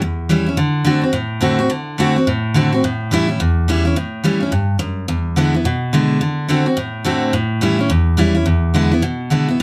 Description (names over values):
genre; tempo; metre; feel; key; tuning
rock; 213 BPM; 4/4; swing 63% on 8ths; unclear; A4 = 442 Hz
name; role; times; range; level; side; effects
picked steel-string acoustic guitar; solo; 0.0-9.6 s; E2 to F#4; -17 LUFS; equal; none
room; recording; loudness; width
light reverb; none; -17 LUFS; mono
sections
0.0-9.6 A section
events
none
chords
0.0 A7 (rootless); 0.6 D7; 2.8 A7; 5.1 E7; 6.2 D7; 7.3 A7; 8.5 E7